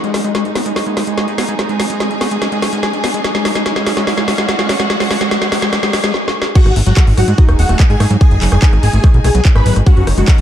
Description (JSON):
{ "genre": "psychedelic trance", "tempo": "145 BPM", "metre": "4/4", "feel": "straight", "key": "unclear", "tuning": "A4 = 439 Hz", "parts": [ { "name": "pulsing gated texture", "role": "sustained chords", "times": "0.0-10.4 s", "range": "G#3 to D#4", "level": "-27 LUFS", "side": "right 1 dB", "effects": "none" }, { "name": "overdriven acid bass", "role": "riff", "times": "0.0-10.3 s", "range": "F#3 to D#4", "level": "-20 LUFS", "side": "moving between left 7 dB and right 6 dB", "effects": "auto-pan, sidechain pumping, ping-pong delay" }, { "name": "plucky analog bass", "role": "bass", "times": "0.0-10.4 s", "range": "D#1 to G#2", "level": "-16 LUFS", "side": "equal", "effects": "high-pass filter" }, { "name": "drum and bass drum kit", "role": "drums", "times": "0.0-10.4 s", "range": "crash cymbal, handclaps, hi-hat, rim click, snare drum", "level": "-18 LUFS", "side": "left 1 dB", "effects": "none" }, { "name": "riser", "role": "sound effects", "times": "0.5-6.1 s", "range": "none", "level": "-25 LUFS", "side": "right 1 dB", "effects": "none" }, { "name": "bright studio string section", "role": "texture", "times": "0.0-10.4 s", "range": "C#4 to G#5", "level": "-25 LUFS", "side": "right 1 dB", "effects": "sidechain pumping" }, { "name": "dense compressed supersaw", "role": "melody", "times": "6.6-10.4 s", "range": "F#4 to B4", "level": "-20 LUFS", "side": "equal", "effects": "phaser, sidechain pumping, ping-pong delay" }, { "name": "electronic kick drum", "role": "drums", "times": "6.6-10.4 s", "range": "none", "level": "-10 LUFS", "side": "equal", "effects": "none" } ], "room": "light reverb, digital ambience", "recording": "dark, warm production", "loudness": "-11 LUFS", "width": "side -11 dB against mid", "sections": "0.0-6.6 A section; 6.6-10.4 B section", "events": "build-up 0.0-6.6; drum fill 0.0-6.1, 6.1-6.6; riser 0.5-6.1; stop 6.1-6.6; drop 6.6-10.4", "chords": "0.0 G#5; 3.2 F#5; 6.6 G#5; 9.9 F#5" }